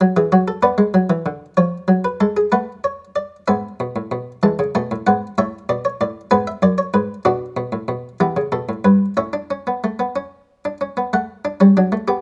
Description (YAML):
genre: classical, baroque-style 4-part fugue for harpsichord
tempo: 63 BPM (dotted quarters)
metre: 6/8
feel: straight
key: D major from 7.3 s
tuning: A4 = 440 Hz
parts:
  - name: buff-stop harpsichord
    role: solo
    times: 0.0-12.2 s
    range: F#2 to A5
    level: -18 LUFS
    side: equal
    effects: none
room: light reverb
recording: nothing above 11.0 kHz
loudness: -19 LUFS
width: mono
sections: 0.0-3.5 A section; 3.5-11.1 B section; 11.1-12.2 C section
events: none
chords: 0.0 F#m; 0.6 Bm; 1.6 C#/E#; 2.5 F#m/A; 3.5 E/G#; 4.4 Amaj7; 5.4 D5/A; 6.3 G#m7b5; 7.3 Bm; 8.2 Em; 9.2 A; 11.1 D/A